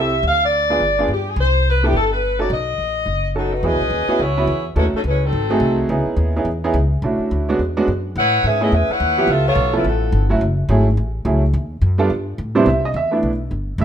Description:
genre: jazz, big band swing.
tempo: 212 BPM.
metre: 4/4.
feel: swing 62% on 8ths.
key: E major from 3.6 s.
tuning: A4 = 440 Hz.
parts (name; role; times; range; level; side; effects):
mellow saxophone section; melody; 0.0-5.8, 8.2-10.3 s; E#3 to F#5; -18 LUFS; left 1 dB; none.
bright upright piano; accompaniment; 0.0-13.8 s; C3 to E5; -19 LUFS; right 2 dB; none.
upright bass; bass; 0.0-13.8 s; F#1 to A2; -20 LUFS; equal; none.
room: moderate large studio reverb, RT60 1.1 s.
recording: minimal, uncompressed stereo recording.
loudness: -16 LUFS.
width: side -9 dB against mid.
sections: 0.0-3.6 A section; 3.6-12.7 B section; 12.7-13.8 C section.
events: upright piano solo 12.7-13.8.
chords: 0.2 Dm; 0.8 G7b9; 1.4 Cmaj7(no3); 2.5 B7; 3.6 E6; 4.8 D#m7b5; 5.3 G#7b9; 5.9 C#m7; 7.0 Bm11; 7.6 E13; 8.2 Amaj9; 9.3 C#7alt; 10.4 F#m9; 11.5 B7; 12.1 Cmaj13.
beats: | 0.24 0.53 0.81 1.09 | 1.38 1.66 1.94 2.22 | 2.51 2.79 3.07 3.35 | 3.64 3.92 4.20 4.49 | 4.77 5.05 5.33 5.61 | 5.90 6.18 6.46 6.74 | 7.03 7.31 7.59 7.87 | 8.16 8.44 8.72 9.00 | 9.28 9.57 9.85 10.13 | 10.41 10.69 10.98 11.26 | 11.54 11.82 12.10 12.38 | 12.67 12.95 13.23 13.51 | 13.79.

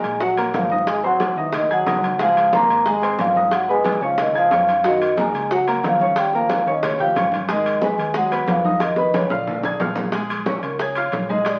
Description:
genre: Afro-Cuban jazz.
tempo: 181 BPM.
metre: 4/4.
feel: straight.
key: unclear.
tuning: A4 = 440 Hz.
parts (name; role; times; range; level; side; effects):
vibraphone with soft mallets; melody; 0.0-11.6 s; Bb4 to Bb5; -22 LUFS; equal; none.
growling trombone; second line; 0.0-9.8 s; Db3 to Bb3; -30 LUFS; equal; none.
clear baby grand piano; accompaniment; 0.0-11.6 s; Gb3 to Ab6; -27 LUFS; equal; none.
hollow-body short-scale fingered electric bass; bass; 0.0-11.6 s; Ab1 to Gb2; -36 LUFS; equal; none.
bongos; percussion; 0.0-11.6 s; none; -31 LUFS; equal; none.
congas; percussion; 0.0-11.6 s; none; -32 LUFS; equal; none.
timbales; percussion; 0.0-11.6 s; none; -32 LUFS; equal; none.
room: wet studio reverb, RT60 0.7 s.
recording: very old 78 rpm record, vinyl crackle.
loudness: -19 LUFS.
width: mono.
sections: 0.0-10.1 A section; 10.1-11.6 B section.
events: drum fill 8.8-10.1; vibraphone solo 10.1-11.6.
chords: 0.0 Ebmadd9; 0.9 Ab7; 3.5 Abm; 4.2 Db; 4.8 Gbmaj7; 6.2 Eb7; 7.5 Abm7; 8.8 Bmaj9#11; 9.5 Bb7; 10.1 Bbm7.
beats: 0.21 0.54 | 0.87 1.20 1.53 1.86 | 2.20 2.53 2.86 3.19 | 3.52 3.85 4.18 4.51 | 4.84 5.17 5.50 5.84 | 6.17 6.50 6.83 7.16 | 7.49 7.82 8.15 8.48 | 8.81 9.14 9.47 9.81 | 10.14 10.47 10.80 11.13 | 11.46.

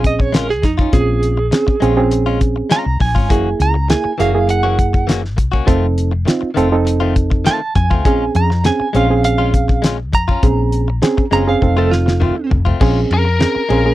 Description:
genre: straight-eighth soul blues.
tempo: 101 BPM.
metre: 4/4.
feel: straight.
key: Bb minor.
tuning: A4 = 439 Hz.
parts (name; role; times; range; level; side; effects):
direct-recorded clean electric guitar; second line; 0.0-12.5 s; Eb4 to Bb5; -19 LUFS; right 4 dB; tremolo.
reed electric piano; accompaniment; 0.0-13.9 s; Bb3 to A4; -18 LUFS; right 4 dB; overdrive.
direct-recorded clean electric guitar; stabs; 0.0-13.9 s; Eb3 to Gb4; -23 LUFS; left 7 dB; none.
woody fretless electric bass; bass; 0.0-13.9 s; F1 to F2; -17 LUFS; left 1 dB; ensemble chorus.
cloth-damped thuddy drum kit; drums; 0.0-13.8 s; crash cymbal, hi-hat, kick drum, ride cymbal, snare drum, toms; -16 LUFS; left 1 dB; none.
biting lead guitar; melody; 13.1-13.9 s; Bb4; -17 LUFS; left 4 dB; overdrive.
room: little or no reverb.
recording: dry, close 1970s-style studio recording.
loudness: -13 LUFS.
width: side -15 dB against mid.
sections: 0.0-12.8 A section; 12.8-13.9 A section.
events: clean electric guitar solo 0.0-12.8; drum fill 11.6-12.8; lead electric guitar solo 12.8-13.9.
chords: 0.0 Bbm7; 3.3 Gb7; 5.7 F7; 8.1 Bbm7; 11.6 F7; 12.8 Bbm7.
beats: 0.34 | 0.93 1.52 2.11 2.71 | 3.30 3.89 4.49 5.08 | 5.67 6.27 6.86 7.46 | 8.05 8.64 9.24 9.83 | 10.43 11.02 11.62 12.21 | 12.80 13.40.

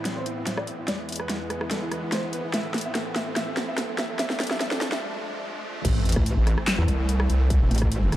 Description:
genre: heavy wobble dubstep.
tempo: 145 BPM.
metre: 4/4.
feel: half-time.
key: A minor.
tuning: A4 = 440 Hz.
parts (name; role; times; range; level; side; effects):
supersaw chords; sustained chords; 0.0-8.2 s; E2 to D4; -34 LUFS; equal; sidechain pumping.
riser and sub drop; sound effects; 2.5-7.5 s; none; -36 LUFS; equal; none.
dark concert grand piano; melody; 0.1-5.0 s; E4 to E5; -33 LUFS; right 1 dB; low-pass filter, tape echo.
dubstep drum kit; drums; 0.1-8.2 s; crash cymbal, handclaps, hi-hat, rim click, snare drum; -28 LUFS; equal; none.
wobble bass; bass; 5.8-8.2 s; E1 to C2; -22 LUFS; equal; chorus, overdrive.
electronic kick drum; drums; 5.8-7.9 s; none; -24 LUFS; equal; distortion.
metallic wobble bass; bass; 6.2-8.1 s; A1 to E2; -22 LUFS; equal; distortion, chorus, overdrive.
room: light reverb.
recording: dark, warm production, high-pass filter.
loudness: -23 LUFS.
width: side -14 dB against mid.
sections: 0.0-5.8 A section; 5.8-8.2 B section.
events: build-up 0.0-5.8; drum fill 0.0-5.0; filter sweep on grand piano 0.0-5.8; riser 2.5-5.8; break 5.0-5.8; drop 5.8-8.2; impact 5.8-7.5.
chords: 0.0 Amadd9; 0.9 E; 2.5 Amadd9; 4.2 F6; 5.8 Am.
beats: 0.06 0.47 | 0.88 1.30 1.71 2.12 | 2.54 2.95 3.37 3.78 | 4.19 4.61 5.02 5.43 | 5.85 6.26 6.67 7.09 | 7.50 7.92.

